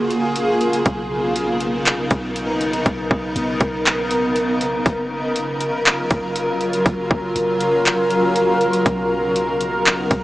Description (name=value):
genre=hip hop, atmospheric cloud-rap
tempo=120 BPM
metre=4/4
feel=half-time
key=F# major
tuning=A4 = 444 Hz
part: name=granular cloud pad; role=sustained chords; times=0.0-10.2 s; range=C#3 to A#4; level=-18 LUFS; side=equal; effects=built-in reverb, sidechain pumping
part: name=clean 808-style bass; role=bass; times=0.0-10.2 s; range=F#1 to B1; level=-32 LUFS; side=equal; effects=none
part: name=trap drum kit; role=drums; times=0.1-10.2 s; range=handclaps, hi-hat, kick drum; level=-18 LUFS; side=equal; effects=none
room=light reverb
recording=dry, gritty hardware recording, small speaker sound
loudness=-17 LUFS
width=side -16 dB against mid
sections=0.0-10.2 A section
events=none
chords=0.0 F#maj7; 0.9 Bmaj9; 4.9 F#maj7; 8.9 Bmaj9